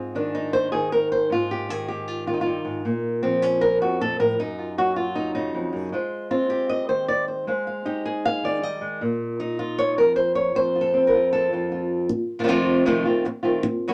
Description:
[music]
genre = flamenco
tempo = 156 BPM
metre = 4/4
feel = straight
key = unclear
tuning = A4 = 440 Hz
[part]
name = flamenco guitar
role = solo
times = 0.0-13.9 s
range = F2 to F5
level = -24 LUFS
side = equal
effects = none
[sound]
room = moderate club reverb, RT60 0.5 s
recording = none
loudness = -23 LUFS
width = mono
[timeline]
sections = 0.0-12.1 A section; 12.1-13.9 B section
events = none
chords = 0.0 Ab6; 2.8 Bbm; 4.4 Gb5; 5.9 Ab6; 9.0 Bb5; 10.6 F; 12.1 F7

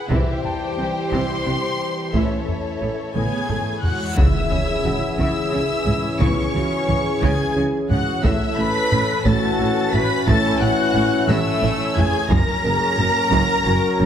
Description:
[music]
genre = cinematic, hybrid orchestral and electronic film score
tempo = 59 BPM (dotted quarters)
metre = 6/8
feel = straight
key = C# minor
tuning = A4 = 441 Hz
[part]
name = dark symphonic violin section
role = melody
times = 0.0-14.1 s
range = E5 to B6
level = -27 LUFS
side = left 2 dB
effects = none
[part]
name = warm symphonic violin section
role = second line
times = 0.0-14.1 s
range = G4 to B5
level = -26 LUFS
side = left 3 dB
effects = none
[part]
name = hollow soft pad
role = sustained chords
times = 0.0-14.1 s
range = E3 to C#5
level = -29 LUFS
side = left 1 dB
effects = chorus
[part]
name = felt-muted upright piano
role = texture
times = 0.0-14.1 s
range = B3 to A5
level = -35 LUFS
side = left 2 dB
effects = none
[part]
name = rich symphonic viola section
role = accompaniment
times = 0.1-14.1 s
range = E3 to B4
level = -29 LUFS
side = right 1 dB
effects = none
[part]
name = mellow French horn section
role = sustained chords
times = 0.1-14.1 s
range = G3 to A#4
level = -27 LUFS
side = left 4 dB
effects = none
[part]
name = thumb-piano-like synth pluck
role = arpeggios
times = 0.1-14.1 s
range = C3 to A4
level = -29 LUFS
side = right 2 dB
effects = chorus, tape echo
[part]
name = rich symphonic double bass section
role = bass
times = 0.1-14.1 s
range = F#1 to C#2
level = -26 LUFS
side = right 2 dB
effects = none
[part]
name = warm symphonic cello section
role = bass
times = 0.1-14.1 s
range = F#2 to C#3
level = -26 LUFS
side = right 2 dB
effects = none
[part]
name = taiko ensemble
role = drums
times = 0.1-14.1 s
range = none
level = -24 LUFS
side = equal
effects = none
[part]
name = reverse cymbal and impact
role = sound effects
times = 4.0-6.2 s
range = none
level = -27 LUFS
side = equal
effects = none
[part]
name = warm trombone section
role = sustained chords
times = 4.2-14.1 s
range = E3 to C#4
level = -28 LUFS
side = right 2 dB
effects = none
[sound]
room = moderate scoring stage reverb, RT60 1.6 s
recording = none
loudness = -17 LUFS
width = side -9 dB against mid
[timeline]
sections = 0.0-4.2 A section; 4.2-14.1 B section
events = drum fill 3.2-4.2, 11.3-12.3; reverse cymbal 4.0; impact 4.2-6.2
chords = 0.1 C; 2.1 A; 4.2 C#m; 8.2 A; 12.3 F#

